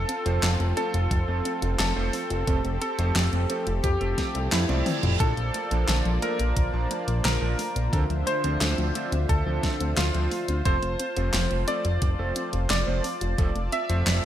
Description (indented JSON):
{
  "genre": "synthwave",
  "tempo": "88 BPM",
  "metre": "4/4",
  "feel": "straight",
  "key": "F major",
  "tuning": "A4 = 442 Hz",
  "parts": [
    { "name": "clear electric grand piano", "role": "melody", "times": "0.0-14.2 s", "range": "E4 to E5", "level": "-30 LUFS", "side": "equal", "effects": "analog chorus, digital delay" },
    { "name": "brassy analog pad", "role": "sustained chords", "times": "0.0-14.2 s", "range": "D3 to A5", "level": "-33 LUFS", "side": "equal", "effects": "chorus, vintage 12-bit sampler grit" },
    { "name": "soft round pluck", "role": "arpeggios", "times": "0.0-14.2 s", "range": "D3 to F4", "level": "-36 LUFS", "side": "left 2 dB", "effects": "chorus, ping-pong delay" },
    { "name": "fat analog bass", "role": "bass", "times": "0.0-14.2 s", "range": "F1 to F2", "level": "-26 LUFS", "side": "equal", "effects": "none" },
    { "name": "pop drum kit", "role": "drums", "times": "0.1-14.2 s", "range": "handclaps, hi-hat, snare drum, toms", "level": "-29 LUFS", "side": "equal", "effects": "small room ambience, gated reverb" },
    { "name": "warm electric grand piano", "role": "stabs", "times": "0.3-14.2 s", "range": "F3 to A5", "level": "-34 LUFS", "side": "right 4 dB", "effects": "none" },
    { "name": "electronic kick drum", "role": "drums", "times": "1.1-13.5 s", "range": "none", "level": "-25 LUFS", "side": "equal", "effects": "small room ambience" },
    { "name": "reverse cymbal", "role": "sound effects", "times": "4.3-5.2 s", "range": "none", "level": "-36 LUFS", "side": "right 7 dB", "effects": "none" }
  ],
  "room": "light reverb",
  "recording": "bright 1980s-style digital production",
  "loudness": "-23 LUFS",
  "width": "side -11 dB against mid",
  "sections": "0.0-14.2 A section",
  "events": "reverse cymbal 4.3-5.2; drum fill 4.7-5.2",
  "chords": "0.0 F; 5.2 Bbmaj7; 7.9 Dm7; 10.7 F",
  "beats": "0.43 1.11 1.79 | 2.47 3.16 3.84 4.52 | 5.20 5.88 6.57 7.25 | 7.93 8.61 9.29 9.97 | 10.66 11.34 12.02 12.70 | 13.38 14.06"
}